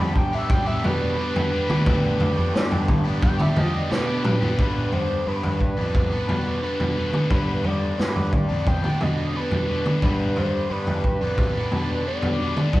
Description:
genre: psychedelic rock.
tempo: 88 BPM.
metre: 4/4.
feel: straight.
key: G major.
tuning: A4 = 438 Hz.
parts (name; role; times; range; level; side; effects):
overdriven synth lead; melody; 0.0-12.8 s; B4 to B5; -28 LUFS; equal; distortion.
combo organ; sustained chords; 0.0-4.6 s; D3 to G4; -36 LUFS; right 3 dB; none.
cranked stack guitar; riff; 0.0-12.8 s; G2 to G4; -28 LUFS; equal; overdrive, phaser.
fuzz picked electric bass; bass; 0.0-12.8 s; D2 to F3; -28 LUFS; equal; overdrive.
crunchy breakbeat drum kit; drums; 0.2-12.8 s; kick drum, snare drum, toms; -22 LUFS; equal; none.
room: light reverb.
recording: band playing live in one room.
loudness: -20 LUFS.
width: side -17 dB against mid.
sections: 0.0-4.6 A section; 4.6-12.8 B section.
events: analog synth lead solo 0.0-4.6; drum fill 3.9-4.6.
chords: 0.0 G.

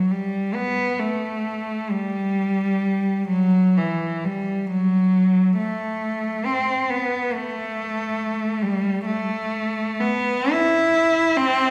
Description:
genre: classical, free, expressive piece for unaccompanied cello.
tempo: 55-72 BPM.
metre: 3/4.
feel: rubato.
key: unclear.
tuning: A4 = 440 Hz.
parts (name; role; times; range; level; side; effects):
rich cello; solo; 0.0-11.7 s; E3 to E4; -22 LUFS; equal; none.
room: wet recital hall reverb, RT60 1.6 s.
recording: heard from further back in the room.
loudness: -22 LUFS.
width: mono.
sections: 0.0-11.7 A section.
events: none.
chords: none.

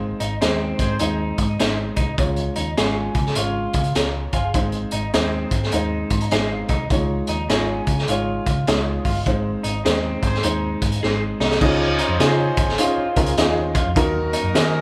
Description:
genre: uptempo 1960s-style soul.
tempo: 102 BPM.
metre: 4/4.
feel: swing 64% on 8ths.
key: Db major.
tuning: A4 = 443 Hz.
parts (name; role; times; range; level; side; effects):
clear upright piano; accompaniment; 0.0-14.8 s; Ab3 to C6; -27 LUFS; equal; none.
hollow-body short-scale picked electric bass; bass; 0.0-14.8 s; G1 to Eb3; -28 LUFS; equal; none.
electric guitar through a small old amp; riff; 0.2-14.8 s; C4 to F4; -31 LUFS; equal; spring reverb.
crunchy breakbeat drum kit; drums; 0.2-14.7 s; crash cymbal, hi-hat, kick drum, snare drum; -24 LUFS; equal; none.
electric guitar through a small old amp; stabs; 0.4-14.7 s; Eb4 to Eb5; -33 LUFS; equal; phaser.
clear horn section; second line; 0.8-1.2, 10.2-14.8 s; Eb4 to C5; -32 LUFS; equal; none.
tonewheel organ; sustained chords; 11.6-14.8 s; Gb3 to F4; -36 LUFS; equal; none.
room: moderate large studio reverb, RT60 1.2 s.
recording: band playing live in one room.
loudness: -21 LUFS.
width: mono.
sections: 0.0-11.6 A section; 11.6-14.8 B section.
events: band accent 0.0-2.2, 9.3-11.6; upright piano fill 5.7-6.9; drum fill 11.0-11.6.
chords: 0.0 Ab; 2.2 Db; 4.5 Ab; 6.9 Dbadd9; 9.3 Ab; 11.6 Dbadd9; 14.0 Ebm.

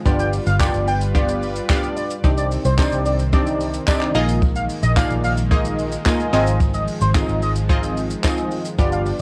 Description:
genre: dance-pop.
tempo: 110 BPM.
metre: 4/4.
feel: straight.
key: unclear.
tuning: A4 = 443 Hz.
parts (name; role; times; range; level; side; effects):
soft supersaw; sustained chords; 0.0-9.2 s; C3 to D5; -31 LUFS; equal; sidechain pumping, cassette tape.
punchy chord stab; accompaniment; 0.1-9.2 s; Bb3 to Eb5; -25 LUFS; equal; chorus, sidechain pumping, cassette tape.
vintage muted fingered electric bass; bass; 0.1-9.1 s; G1 to C2; -24 LUFS; equal; sidechain pumping.
jazz brush drum kit; drums; 0.1-9.2 s; handclaps, hi-hat, kick drum, shaker, snare drum; -24 LUFS; equal; cassette tape.
octave-doubled lead; melody; 0.2-9.0 s; C5 to G5; -28 LUFS; equal; chorus, phaser, sidechain pumping, cassette tape, tape echo.
tambourine; percussion; 0.6-8.4 s; none; -38 LUFS; equal; none.
room: light reverb.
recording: home recording on cassette.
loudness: -19 LUFS.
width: mono.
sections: 0.0-9.2 A section.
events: none.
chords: 0.1 G7; 2.2 Cmadd9; 4.1 Bb7sus4; 6.3 Fm7/Ab.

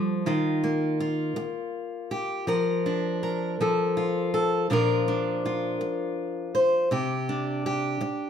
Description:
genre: folk, solo fingerstyle acoustic guitar.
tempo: 54 BPM (dotted quarters).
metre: 6/8.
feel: straight.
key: Bb major.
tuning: A4 = 438 Hz.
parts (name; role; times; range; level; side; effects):
fingerpicked steel-string acoustic guitar; solo; 0.0-8.3 s; Bb2 to C5; -24 LUFS; left 1 dB; none.
room: moderate large studio reverb, RT60 0.9 s.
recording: band playing live in one room.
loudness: -24 LUFS.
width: side -8 dB against mid.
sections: 0.0-8.3 A section.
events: none.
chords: 0.3 Ebadd9; 2.5 Bb/F; 3.6 F; 4.7 Bbadd9; 6.9 Csus2.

